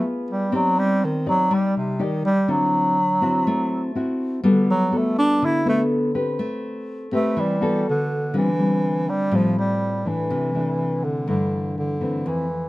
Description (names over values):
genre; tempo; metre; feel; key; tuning
bossa nova; 123 BPM; 4/4; straight; G major, C major from 8.3 s; A4 = 438 Hz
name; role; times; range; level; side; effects
breathy bass clarinet; melody; 0.0-12.7 s; C3 to E4; -21 LUFS; right 1 dB; none
nylon-string guitar; accompaniment; 0.0-12.7 s; F2 to D5; -22 LUFS; left 1 dB; none
room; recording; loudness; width
light reverb; close, detailed microphones; -19 LUFS; side -18 dB against mid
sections
0.0-8.3 A section; 8.3-12.7 B section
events
bass clarinet solo 0.0-8.3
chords
0.0 G7b9; 0.5 Cmadd9; 2.5 D9; 4.4 Gmaj9; 6.4 Am9; 7.9 D6; 8.3 Dm11; 10.3 C69